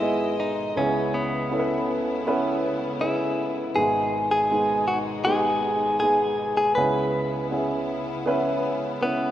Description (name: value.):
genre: pop ballad.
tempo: 80 BPM.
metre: 4/4.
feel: straight.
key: C# minor.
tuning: A4 = 442 Hz.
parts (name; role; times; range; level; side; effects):
direct-recorded clean electric guitar; melody; 0.0-9.3 s; B3 to B4; -24 LUFS; left 1 dB; spring reverb.
warm baby grand piano; accompaniment; 0.0-9.3 s; G#1 to D#5; -25 LUFS; right 1 dB; none.
warm studio string section; sustained chords; 0.0-9.3 s; B2 to D#5; -34 LUFS; left 3 dB; none.
room: moderate lush hall reverb, RT60 3.1 s.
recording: rough home demo mix.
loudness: -22 LUFS.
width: side -12 dB against mid.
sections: 0.0-9.3 A section.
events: none.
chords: 0.0 G#m; 0.8 C#m7; 3.8 G#m; 6.8 C#m7.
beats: 0.01 | 0.76 1.51 2.26 3.01 | 3.76 4.51 5.26 6.01 | 6.76 7.51 8.26 9.01.